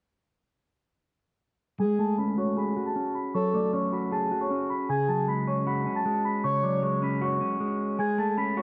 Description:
hip hop; 155 BPM; 4/4; half-time; F# minor; A4 = 440 Hz
large celesta; melody; 1.8-8.6 s; C#5 to B6; -32 LUFS; equal; low-pass filter
breathy flute-like synth lead; second line; 1.8-8.4 s; G#4 to C#5; -34 LUFS; equal; chorus, tape echo
clean electric guitar; accompaniment; 1.8-8.6 s; C#3 to G#4; -30 LUFS; equal; spring reverb, low-pass filter
light reverb, small room reverb; nothing above 10.6 kHz; -27 LUFS; mono
1.8-8.6 A section
filter sweep 1.8-8.6
1.8 F#madd9; 4.9 C#sus4; 8.0 F#madd9 (rootless)

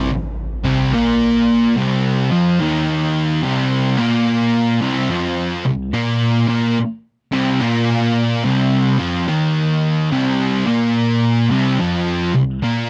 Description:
metal; 72 BPM; 4/4; swing 65% on 8ths; C minor; A4 = 440 Hz
distorted electric guitar; riff; 0.0-12.9 s; C2 to Bb3; -26 LUFS; equal; overdrive
thick fuzz guitar; riff; 0.0-12.9 s; C2 to Bb3; -21 LUFS; equal; distortion
thick fuzz guitar; riff; 0.0-12.9 s; C2 to Bb3; -21 LUFS; equal; distortion
light reverb; -17 LUFS; mono
0.1-12.9 A section
0.1 Cm

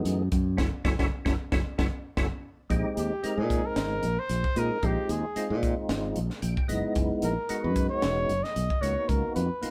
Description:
electric jazz fusion; 113 BPM; 4/4; swing 55% on 16ths; A4 = 442 Hz
percussive tonewheel organ; accompaniment; 0.0-9.7 s; Fb3 to G5; -34 LUFS; equal; slow rotary speaker, chorus vibrato
modern bright fingered electric bass; bass; 0.1-9.7 s; Fb1 to Bb2; -32 LUFS; equal
crisp fusion drum kit; drums; 0.1-9.7 s; hi-hat, kick drum, snare drum; -32 LUFS; equal
mellow trumpet; melody; 3.0-9.7 s; G4 to Eb5; -33 LUFS; equal
light reverb; band playing live in one room; -28 LUFS; mono
0.0-2.7 A section; 2.7-9.7 B section
band accent 0.6-2.7; drum fill 1.6-2.7; tonewheel organ fill 1.6-2.7, 6.2-7.0
0.0 Gbm11; 2.7 Bb13sus4; 6.7 Gb13sus4; 8.8 Db13sus4

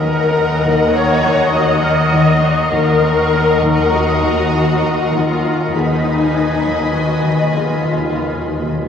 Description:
cinematic; 100 BPM; 5/4; straight; Eb minor; A4 = 440 Hz
warm symphonic violin section; melody; 0.0-8.7 s; Bb5 to B5; -28 LUFS; equal
warm symphonic violin section; second line; 0.0-8.7 s; Eb5 to G#5; -22 LUFS; left 1 dB
warm studio viola section; accompaniment; 0.0-8.7 s; D#4 to Eb5; -17 LUFS; left 2 dB
bubbling stepped-filter texture; sustained chords; 0.0-8.7 s; Bb4 to Bb5; -25 LUFS; equal; chorus, built-in reverb
rich symphonic cello section; riff; 0.0-8.6 s; Eb3 to Eb4; -21 LUFS; left 2 dB
rich symphonic double bass section; bass; 0.0-8.7 s; Eb2; -22 LUFS; left 1 dB
warm symphonic cello section; bass; 0.0-8.7 s; Eb2; -22 LUFS; equal
music box; texture; 0.0-3.6 s; Db5 to F6; -32 LUFS; right 1 dB
rich symphonic violin section; texture; 0.0-5.4 s; Bb5 to Db6; -30 LUFS; left 3 dB
warm French horn section; sustained chords; 1.5-7.8 s; Bb3 to G#4; -30 LUFS; left 3 dB
timpani; percussion; 5.7-8.9 s; D#3; -24 LUFS; left 3 dB
wet cathedral reverb, RT60 5.9 s; worn, warbling old tape, cassette tape, warbly pitch drift, studio reverb; -13 LUFS; side -7 dB against mid
0.0-8.9 A section
timpani fill 5.7-8.9
0.0 Ebmadd9; 5.7 B6/D#

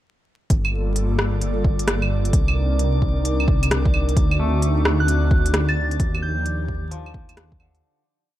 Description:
future garage; 131 BPM; 4/4; swing 64% on 16ths; G minor; A4 = 441 Hz
airy breathy pad; sustained chords; 0.7-7.8 s; F3 to Bb4; -27 LUFS; equal; chorus, sidechain pumping
dark detuned saw bass; bass; 0.5-7.8 s; G1 to Eb2; -21 LUFS; equal; sidechain pumping
electronic kick drum; drums; 0.5-7.6 s; -20 LUFS; equal
organic electronic drum kit; drums; 0.5-7.8 s; claves, hi-hat, rim click; -24 LUFS; right 1 dB; overdrive
drifting glass-harmonics texture; texture; 0.8-7.8 s; D5; -33 LUFS; right 1 dB; chorus, built-in reverb
twangy electric guitar; accompaniment; 4.4-8.0 s; D3 to A3; -32 LUFS; left 3 dB; sidechain pumping, ping-pong delay
soft synth bell; melody; 5.0-6.7 s; F#6 to A6; -28 LUFS; equal; chorus, tape echo
light reverb, digital ambience; vinyl crackle; -18 LUFS; side -13 dB against mid
0.5-7.8 groove
fade-out 5.4-7.8
0.5 Gm9; 2.3 Cm9; 4.2 D7b9; 6.0 Ebmaj9

